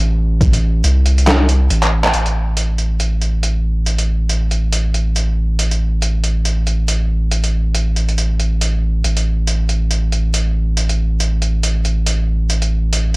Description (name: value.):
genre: deep dubstep.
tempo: 139 BPM.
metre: 4/4.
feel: swing 57% on 16ths, half-time.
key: A minor.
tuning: A4 = 440 Hz.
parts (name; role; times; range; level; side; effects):
soft dub sub bass; bass; 0.0-13.2 s; A1 to C2; -15 LUFS; equal; none.
electronic kick drum; drums; 0.4-0.5 s; none; -12 LUFS; equal; overdrive, cassette tape.
trip hop sampler-style drum kit; drums; 0.4-13.2 s; handclaps, hi-hat, snare drum; -19 LUFS; equal; overdrive, cassette tape.
room: little or no reverb.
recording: home recording on cassette.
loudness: -14 LUFS.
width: side -25 dB against mid.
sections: 0.0-2.1 A section; 2.1-13.2 B section.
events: kick drops out 1.7-2.1; drum fill 1.8-2.1; band accent 2.0.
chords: none.